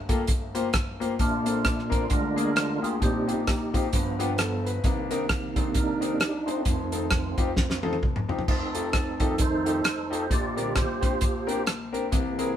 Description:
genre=uptempo gospel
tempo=132 BPM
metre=4/4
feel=swing 58% on 8ths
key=Bb major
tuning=A4 = 440 Hz
part: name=clear concert grand piano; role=accompaniment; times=0.0-12.6 s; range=F1 to C5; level=-29 LUFS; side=left 4 dB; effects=none
part: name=percussive tonewheel organ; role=sustained chords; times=0.0-12.6 s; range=F2 to D5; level=-29 LUFS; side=right 3 dB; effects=slow rotary speaker, overdrive, chorus vibrato
part: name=warm soul drum kit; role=drums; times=0.1-12.5 s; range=hi-hat, kick drum, rim click, snare drum, splash cymbal, toms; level=-26 LUFS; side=equal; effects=none
room=moderate stone room reverb, RT60 1.0 s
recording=band playing live in one room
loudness=-24 LUFS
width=side -10 dB against mid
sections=0.0-12.6 A section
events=tonewheel organ solo 0.0-12.6; drum fill 7.6-8.5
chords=0.0 Gm9; 1.2 Bbmaj9; 2.1 Bb7/D; 3.0 Eb69/Bb; 3.9 G7; 4.8 Cm9; 6.7 F9; 10.3 Bb69

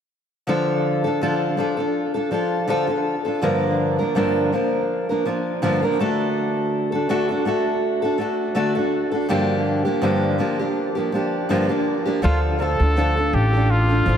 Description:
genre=acoustic pop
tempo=82 BPM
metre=4/4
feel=swing 55% on 16ths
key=unclear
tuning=A4 = 440 Hz
part: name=fingerpicked steel-string acoustic guitar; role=accompaniment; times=0.5-14.2 s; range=G2 to Bb4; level=-19 LUFS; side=equal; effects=analog delay
part: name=clear trumpet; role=melody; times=12.2-14.2 s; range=F4 to A4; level=-22 LUFS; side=equal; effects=analog delay
part: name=upright bass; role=bass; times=12.2-14.2 s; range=A1 to D2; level=-19 LUFS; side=equal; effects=none
room=moderate plate reverb, RT60 3.8 s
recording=echo-heavy mix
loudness=-19 LUFS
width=side -8 dB against mid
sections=0.5-12.2 A section; 12.2-14.2 B section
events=none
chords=0.5 Dm; 3.4 Gm7; 6.0 D; 9.3 Gm7; 12.2 Dm

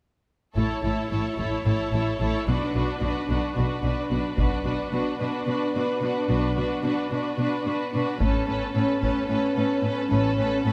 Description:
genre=cinematic, epic orchestral film score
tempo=220 BPM (eighths)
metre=7/8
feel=straight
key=B minor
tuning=A4 = 440 Hz
part: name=clear symphonic violin section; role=melody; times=0.6-10.7 s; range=B4 to C#5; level=-36 LUFS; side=equal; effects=none
part: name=rich symphonic violin section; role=second line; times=0.6-10.7 s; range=F#4 to A4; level=-37 LUFS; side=equal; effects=none
part: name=warm symphonic viola section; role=accompaniment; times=0.6-10.7 s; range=C#4 to E4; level=-31 LUFS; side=equal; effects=none
part: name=rich symphonic cello section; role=bass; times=0.6-10.7 s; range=A2 to B2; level=-32 LUFS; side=equal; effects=none
part: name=rich symphonic double bass section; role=bass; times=0.6-10.4 s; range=A1 to B1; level=-31 LUFS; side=equal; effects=none
part: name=taiko ensemble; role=drums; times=0.6-9.3 s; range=none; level=-32 LUFS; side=equal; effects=none
part: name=mellow French horn section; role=sustained chords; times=4.4-10.7 s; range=B3 to D4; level=-31 LUFS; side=equal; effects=none
room=moderate scoring stage reverb, RT60 2.1 s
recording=none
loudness=-25 LUFS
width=mono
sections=0.6-4.4 A section; 4.4-10.7 B section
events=build-up 4.4-10.7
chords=0.6 A; 2.5 Bm; 8.2 Aadd9

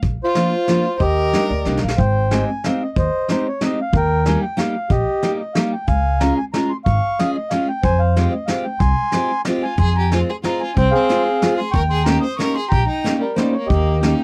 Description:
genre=musette waltz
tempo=184 BPM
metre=3/4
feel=straight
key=Ab major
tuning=A4 = 440 Hz
part: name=upright bass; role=bass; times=0.0-14.1 s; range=Ab1 to F2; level=-21 LUFS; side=equal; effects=none
part: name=vintage brush drum kit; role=drums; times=0.0-14.1 s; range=hi-hat, kick drum, snare drum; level=-24 LUFS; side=equal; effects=none
part: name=mellow accordion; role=melody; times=0.2-14.2 s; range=F4 to Eb6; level=-23 LUFS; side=equal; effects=none
part: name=clear violin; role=second line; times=0.2-1.8, 9.6-14.2 s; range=G3 to C5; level=-28 LUFS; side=equal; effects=none
part: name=picked steel-string acoustic guitar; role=accompaniment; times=0.4-14.2 s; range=F3 to Ab4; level=-23 LUFS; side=equal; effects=none
room=little or no reverb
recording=dry, close 1970s-style studio recording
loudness=-19 LUFS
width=mono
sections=0.0-2.0 A section; 2.0-14.2 B section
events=drum fill 1.7-2.0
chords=0.0 Bb; 1.0 Ebmaj7; 2.0 Abmaj7; 3.9 Eb; 5.9 Db; 7.8 Fmadd9; 9.8 Fm; 11.7 Eb7

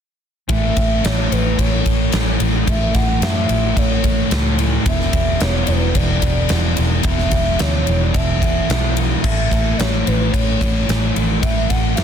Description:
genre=rock, shoegaze and dream pop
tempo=110 BPM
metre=4/4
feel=straight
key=A major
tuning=A4 = 443 Hz
part: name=pure breathy sine lead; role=melody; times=0.5-12.0 s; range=B4 to F#5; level=-24 LUFS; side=right 1 dB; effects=chorus, slapback echo
part: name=thick fuzz guitar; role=riff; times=0.5-12.0 s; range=E2 to A3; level=-21 LUFS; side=equal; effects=distortion, wide subtle chorus
part: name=vintage muted fingered electric bass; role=bass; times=0.5-12.0 s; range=E1 to F#2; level=-20 LUFS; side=equal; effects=none
part: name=huge arena drum kit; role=drums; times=0.5-12.0 s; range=crash cymbal, kick drum, ride cymbal, snare drum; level=-19 LUFS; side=equal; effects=none
room=little or no reverb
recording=dense, heavily limited modern master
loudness=-15 LUFS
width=side -8 dB against mid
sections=0.5-12.0 A section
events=none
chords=0.5 A; 4.9 E5; 9.2 A

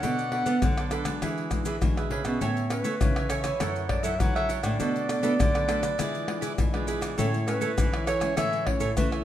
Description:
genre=samba and choro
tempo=101 BPM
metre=4/4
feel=straight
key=A major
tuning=A4 = 440 Hz
part: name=warm clarinet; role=melody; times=0.0-9.1 s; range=A4 to F#5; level=-30 LUFS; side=equal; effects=none
part: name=cavaquinho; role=accompaniment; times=0.0-9.2 s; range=D4 to G#5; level=-33 LUFS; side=right 6 dB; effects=none
part: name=nylon-string guitar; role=accompaniment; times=0.0-9.2 s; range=A2 to C#5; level=-34 LUFS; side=left 3 dB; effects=none
part: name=nylon-string guitar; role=bass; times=0.0-9.2 s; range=F#2 to B3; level=-31 LUFS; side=right 2 dB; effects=none
part: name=maracas, surdo, pandeiro and tamborim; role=percussion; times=0.0-9.2 s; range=none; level=-28 LUFS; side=left 2 dB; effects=none
room=moderate large studio reverb, RT60 1.3 s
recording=minimal, uncompressed stereo recording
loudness=-24 LUFS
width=side -11 dB against mid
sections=0.0-9.2 A section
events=none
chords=0.0 Bm9; 1.2 E9; 2.4 Amaj9; 3.6 F#m7; 4.8 Bm7; 6.0 E7b9; 7.2 Amaj7

